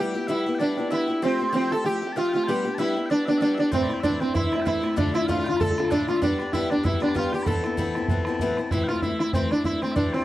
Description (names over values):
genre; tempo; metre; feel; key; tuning
celtic folk, Celtic reel; 192 BPM; 4/4; swing 56% on 8ths; A minor; A4 = 439 Hz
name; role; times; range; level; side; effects
sitar; melody; 0.0-10.2 s; C4 to A4; -25 LUFS; right 1 dB; none
mellow small bagpipes; second line; 0.0-10.2 s; C5 to B5; -34 LUFS; left 2 dB; none
open-back banjo; second line; 0.0-8.5 s; C4 to A4; -32 LUFS; right 6 dB; none
picked steel-string acoustic guitar; accompaniment; 0.0-10.2 s; D2 to G4; -27 LUFS; left 3 dB; none
bodhran; percussion; 3.7-10.2 s; none; -29 LUFS; right 1 dB; none
room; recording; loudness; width
light reverb; dry, close 1970s-style studio recording; -22 LUFS; side -15 dB against mid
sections
0.0-8.7 A section; 8.7-10.2 B section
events
none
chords
0.0 Em/G; 1.2 Fadd9; 2.5 G; 3.7 Am; 5.0 Dm; 6.2 G; 7.5 Amadd9; 8.7 Am